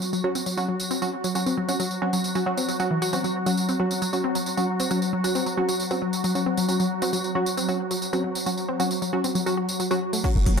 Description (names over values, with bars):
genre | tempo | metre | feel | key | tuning
driving peak-time techno | 135 BPM | 4/4 | straight | unclear | A4 = 440 Hz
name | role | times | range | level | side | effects
filtered dub chord stab | stabs | 0.0-10.6 s | F#3 to F#4 | -28 LUFS | right 1 dB | chorus, vintage 12-bit sampler grit, sidechain pumping, digital delay
swarming drone | drone | 0.0-10.6 s | F#3 to F#4 | -29 LUFS | equal | built-in reverb, sidechain pumping
techno drum kit | drums | 0.0-10.6 s | crash cymbal, hi-hat, tambourine, toms | -31 LUFS | right 1 dB | sidechain pumping on perc, sidechain pumping on cymbals, sidechain pumping on hats, sidechain pumping on toms
wide unison pluck | riff | 0.1-10.6 s | E3 to F#4 | -27 LUFS | left 2 dB | sidechain pumping, dub echo
electronic kick drum | drums | 10.2-10.3 s | none | -24 LUFS | equal | none
growling 808-style bass | bass | 10.4-10.6 s | F#1 | -20 LUFS | equal | tube saturation, sidechain pumping, low-pass filter
room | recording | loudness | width
wet plate reverb, RT60 1.3 s, digital ambience | none | -22 LUFS | side -6 dB against mid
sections
0.0-10.2 A section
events
none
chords
0.0 F#5